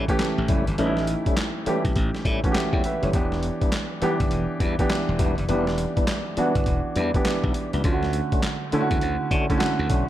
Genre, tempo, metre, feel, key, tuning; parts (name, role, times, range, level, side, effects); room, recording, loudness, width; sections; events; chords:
R&B, new jack swing; 102 BPM; 4/4; swing 63% on 16ths; E dorian; A4 = 440 Hz
warm baby grand piano; accompaniment; 0.0-10.1 s; D3 to G5; -25 LUFS; right 2 dB
tonewheel organ; stabs; 0.0-10.1 s; G3 to F#4; -30 LUFS; left 2 dB; overdrive, fast rotary speaker
glassy slap bass; bass; 0.0-10.0 s; E1 to D3; -27 LUFS; equal
boom bap sampler-style drum kit; drums; 0.1-10.1 s; handclaps, hi-hat, kick drum, snare drum; -25 LUFS; equal; gated reverb
light reverb; -21 LUFS; side -13 dB against mid
0.0-10.1 A section
0.0 A7; 3.1 Em7; 7.8 Dmaj7